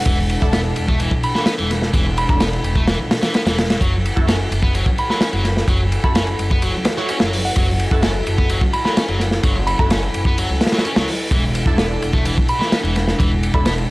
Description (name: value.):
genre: breakbeat, breaks.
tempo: 128 BPM.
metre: 4/4.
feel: straight.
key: F# minor.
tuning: A4 = 438 Hz.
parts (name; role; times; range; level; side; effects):
soft synth bell; melody; 0.0-13.7 s; F#5 to B5; -26 LUFS; equal; chorus, phaser, old record sound, analog delay.
dark analog pad; sustained chords; 0.0-13.9 s; D4 to A4; -29 LUFS; equal; chorus, vintage 12-bit sampler grit, sidechain pumping.
high-gain distorted guitar; riff; 0.1-13.7 s; E3 to C#4; -26 LUFS; equal; distortion.
upright bass; bass; 0.1-13.8 s; E1 to C#2; -21 LUFS; equal; none.
crunchy breakbeat drum kit; drums; 0.1-13.9 s; hi-hat, kick drum, ride cymbal, snare drum; -18 LUFS; equal; none.
orchestra-hit-like synth stab; stabs; 0.4-13.6 s; D4 to C#5; -28 LUFS; right 2 dB; built-in reverb, phaser, cassette tape, analog delay.
room: studio ambience.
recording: dry, gritty hardware recording, vinyl crackle.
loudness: -15 LUFS.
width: side -21 dB against mid.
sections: 0.0-13.9 A section.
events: kick drops out 2.9-3.8.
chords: 0.0 E7sus4; 3.8 F#m7; 11.3 E7sus4.